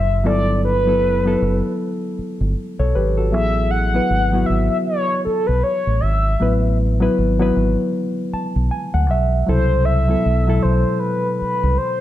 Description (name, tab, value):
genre	R&B, neo-soul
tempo	78 BPM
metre	4/4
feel	swing 58% on 16ths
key	unclear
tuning	A4 = 440 Hz
part	mellow horn-like synth lead	melody	0.0-12.0 s	A4 to F#5	-20 LUFS	equal	chorus, slapback echo
part	reed electric piano	accompaniment	0.0-12.0 s	B2 to A5	-20 LUFS	left 1 dB	none
part	deep dub fingered electric bass	bass	0.0-11.8 s	F#1 to D2	-18 LUFS	equal	none
room	light reverb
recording	dark, warm production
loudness	-16 LUFS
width	side -13 dB against mid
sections	0.0-12.0 A section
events	reed electric piano fill 7.9-9.5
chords	0.2 Gmaj9; 3.3 Asus2; 9.5 Cmaj7